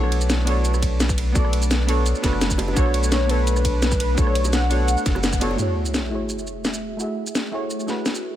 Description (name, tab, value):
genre	liquid drum and bass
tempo	170 BPM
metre	4/4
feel	straight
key	F# minor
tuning	A4 = 436 Hz
part	deep mellow chord stab	accompaniment	0.0-8.4 s	A3 to E5	-27 LUFS	right 1 dB	chorus, digital delay
part	airy breathy pad	sustained chords	0.0-8.4 s	A3 to E5	-30 LUFS	right 1 dB	chorus
part	warm sub bass	bass	0.0-5.6 s	F#1 to B1	-21 LUFS	equal	none
part	garage drum kit	drums	0.0-8.2 s	hi-hat, ride cymbal, rim click, shaker, snare drum	-26 LUFS	equal	none
part	bongos	percussion	0.7-5.6 s	none	-34 LUFS	right 3 dB	none
part	electronic kick drum	drums	0.8-5.4 s	none	-22 LUFS	equal	none
part	warm velvety synth lead	melody	2.8-5.4 s	B4 to F#5	-26 LUFS	left 2 dB	chorus, digital delay
part	sub drop	sound effects	5.6-7.0 s	none	-28 LUFS	equal	none
room	light reverb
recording	none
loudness	-19 LUFS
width	side -12 dB against mid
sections	0.0-5.6 A section; 5.6-8.4 B section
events	drop 0.0-5.6; band accent 5.2; impact 5.6-7.0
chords	0.0 Bm9; 5.6 F#m9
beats	0.29 0.65 1.00 | 1.35 1.71 2.06 2.41 | 2.77 3.12 3.47 3.82 | 4.18 4.53 4.88 5.24 | 5.59 5.94 6.29 6.65 | 7.00 7.35 7.71 8.06